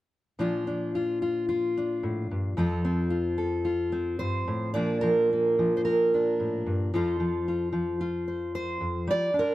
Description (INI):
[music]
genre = folk, solo fingerstyle acoustic guitar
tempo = 111 BPM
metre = 4/4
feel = rubato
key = Bb major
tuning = A4 = 436 Hz
[part]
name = fingerpicked steel-string acoustic guitar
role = solo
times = 0.4-9.5 s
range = F2 to D5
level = -25 LUFS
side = equal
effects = none
[sound]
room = little or no reverb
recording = dry, close 1970s-style studio recording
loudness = -25 LUFS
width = side -15 dB against mid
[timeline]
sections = 0.4-4.7 A section; 4.7-9.5 B section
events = none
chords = 0.4 Bb; 2.6 Fadd9; 4.7 Bb; 6.9 F